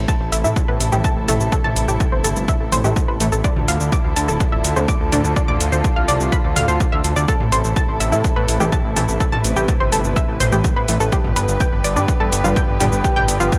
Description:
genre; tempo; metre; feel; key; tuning
melodic techno; 125 BPM; 4/4; straight; A minor; A4 = 440 Hz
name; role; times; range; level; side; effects
muted studio string section; sustained chords; 0.0-13.6 s; C3 to B4; -27 LUFS; equal; sidechain pumping
fat analog bass; bass; 0.0-13.5 s; D1 to A2; -24 LUFS; equal; tube saturation, sidechain pumping
analog pluck; arpeggios; 0.1-13.4 s; D4 to D6; -25 LUFS; equal; chorus, sidechain pumping, tape echo
electronic kick drum; drums; 0.1-13.6 s; none; -22 LUFS; equal; none
techno drum kit; drums; 0.1-13.6 s; hi-hat, shaker, toms; -27 LUFS; equal; none
synth brass stab; stabs; 0.9-5.2, 8.6-12.9 s; G2 to D4; -28 LUFS; equal; none
room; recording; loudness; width
light reverb; none; -18 LUFS; mono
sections
0.0-13.6 A section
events
none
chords
0.0 Am; 3.4 Dmadd9; 7.3 Am; 11.1 G

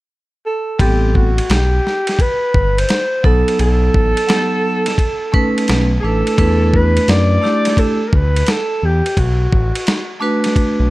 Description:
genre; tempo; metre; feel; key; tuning
hip hop, jazz-hop; 86 BPM; 4/4; swing 65% on 16ths; A dorian; A4 = 438 Hz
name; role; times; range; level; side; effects
breathy alto saxophone; melody; 0.5-10.2 s; F#4 to D5; -18 LUFS; equal; none
vibraphone with medium hard mallets; accompaniment; 0.8-10.9 s; F#3 to B4; -18 LUFS; right 1 dB; none
smooth gliding synth bass; bass; 0.8-10.9 s; G1 to F#2; -15 LUFS; equal; none
dusty soul sampler-style drum kit; drums; 0.8-10.8 s; hi-hat, kick drum, ride cymbal, snare drum; -18 LUFS; equal; none
room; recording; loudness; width
digital ambience; none; -13 LUFS; side -18 dB against mid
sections
0.8-10.9 A section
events
none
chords
0.0 N.C.; 0.8 Am9; 3.2 B7; 5.7 B9; 6.4 E7sus4; 9.2 Bm7

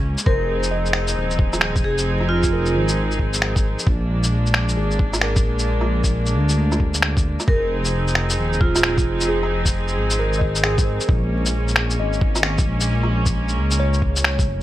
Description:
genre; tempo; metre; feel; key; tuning
future garage; 133 BPM; 4/4; swing 64% on 16ths; F minor; A4 = 438 Hz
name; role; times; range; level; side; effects
overdriven tine electric piano; accompaniment; 0.0-14.6 s; Ab4 to Eb5; -29 LUFS; left 2 dB; wide subtle chorus, sidechain pumping, digital delay
rich chamber string section; sustained chords; 0.0-14.6 s; F3 to Ab4; -25 LUFS; right 1 dB; sidechain pumping
dark detuned saw bass; bass; 0.0-14.6 s; Eb1 to D2; -22 LUFS; equal; sidechain pumping
electronic shaker, finger snaps and woodblock; drums; 0.2-14.5 s; none; -21 LUFS; equal; none
vibraphone with hard mallets; melody; 0.3-2.7, 7.5-9.3 s; F4 to Bb4; -25 LUFS; right 2 dB; digital delay
electronic kick drum; drums; 0.3-14.5 s; none; -20 LUFS; equal; none
room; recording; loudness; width
light reverb; bright 1980s-style digital production, vinyl crackle; -17 LUFS; side -14 dB against mid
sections
0.0-14.6 A section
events
none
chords
0.3 Fm7; 3.9 Bb7; 7.5 Fm7; 11.1 Bbm7

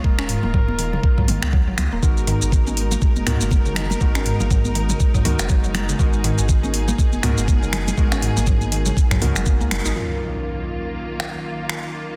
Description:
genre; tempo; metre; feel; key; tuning
afro house; 121 BPM; 4/4; swing 58% on 16ths; unclear; A4 = 440 Hz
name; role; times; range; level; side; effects
trumpet with bucket mute; melody; 0.0-1.7 s; Bb4; -35 LUFS; equal; dub echo
clear studio string section; sustained chords; 0.0-12.2 s; Eb3 to Bb4; -33 LUFS; equal; sidechain pumping, low-pass filter
mallet-like synth pluck; arpeggios; 0.0-9.9 s; Bb2 to Eb4; -32 LUFS; equal; lush chorus, sidechain pumping, dub echo
warm sub bass; bass; 0.0-9.9 s; Eb1 to Db2; -26 LUFS; equal; sidechain pumping
electronic kick drum; drums; 0.0-9.6 s; none; -19 LUFS; equal; none
afro-pop drum kit; drums; 0.2-11.8 s; finger snaps, hi-hat, toms; -28 LUFS; equal; soft clipping on snare
congas; percussion; 0.4-9.8 s; none; -32 LUFS; equal; none
warm analog keys; stabs; 2.0-12.2 s; Gb3 to Bb4; -31 LUFS; equal; chorus, sidechain pumping, low-pass filter, dub echo
maracas; percussion; 2.0-9.9 s; none; -32 LUFS; equal; none
impact; sound effects; 10.0-11.9 s; none; -32 LUFS; equal; none
room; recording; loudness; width
little or no reverb; dense, heavily limited modern master; -20 LUFS; mono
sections
0.0-10.0 A section; 10.0-12.2 B section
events
band accent 9.7; impact 10.0-11.9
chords
0.0 Ebm7; 2.0 Abm7; 10.0 Ebm7

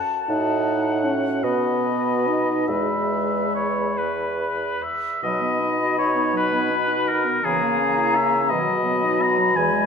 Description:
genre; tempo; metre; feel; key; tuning
classical, slow romantic movement for wind quintet; 46-57 BPM (dotted quarters); 6/8; rubato; E major, B major from 5.2 s; A4 = 440 Hz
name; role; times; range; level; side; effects
concert flute; melody; 0.0-9.9 s; A5 to B5; -26 LUFS; left 5 dB; none
warm oboe; second line; 0.3-9.9 s; G#4 to A#5; -24 LUFS; left 2 dB; none
clear French horn; accompaniment; 0.3-9.9 s; F#3 to D#4; -26 LUFS; right 1 dB; none
mellow clarinet; accompaniment; 0.3-9.9 s; D#3 to B4; -31 LUFS; right 6 dB; none
warm bassoon; bass; 0.3-9.9 s; E2 to C#3; -26 LUFS; right 2 dB; none
room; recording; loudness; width
wet concert hall reverb, RT60 2.2 s; minimal, uncompressed stereo recording; -19 LUFS; side -6 dB against mid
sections
0.0-5.2 A section; 5.2-9.9 B section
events
none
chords
0.3 F#m/A; 1.4 B; 2.7 E; 5.2 B; 7.4 A#dim/C#; 8.5 B

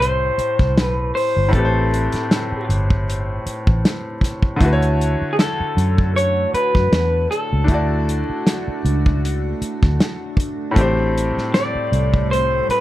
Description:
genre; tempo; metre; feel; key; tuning
R&B, neo-soul; 78 BPM; 4/4; swing 56% on 16ths; unclear; A4 = 440 Hz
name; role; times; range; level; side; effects
electric guitar through a small old amp; melody; 0.0-12.8 s; G#4 to D5; -20 LUFS; left 1 dB; plate reverb
bright grand piano; accompaniment; 0.0-12.8 s; A2 to D5; -24 LUFS; left 1 dB; plate reverb
vintage muted fingered electric bass; bass; 0.0-12.7 s; G1 to F#2; -19 LUFS; equal; none
warm soul drum kit; drums; 0.0-12.8 s; hi-hat, kick drum, snare drum; -18 LUFS; equal; none
evolving wavetable pad; sustained chords; 5.6-12.8 s; G3 to A4; -29 LUFS; right 2 dB; chorus, built-in reverb, phaser, plate reverb
room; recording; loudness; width
light reverb; vinyl crackle; -16 LUFS; side -14 dB against mid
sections
0.0-12.8 A section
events
none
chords
0.0 Am9; 4.6 Dmaj7; 10.8 Am7

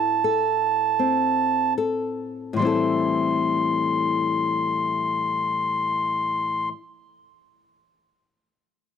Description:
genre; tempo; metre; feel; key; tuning
celtic folk, Celtic slow air; 38 BPM; 4/4; rubato; A minor; A4 = 440 Hz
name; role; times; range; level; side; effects
mellow accordion; melody; 0.0-6.7 s; A5 to C6; -22 LUFS; right 2 dB; none
nylon-string guitar; accompaniment; 0.0-6.8 s; A2 to A4; -25 LUFS; left 5 dB; none
room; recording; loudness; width
small room ambience; dry, close 1970s-style studio recording; -21 LUFS; side -8 dB against mid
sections
0.0-2.6 A section; 2.6-8.8 B section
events
slowing down 0.0-2.6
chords
0.0 Am; 2.6 Am7

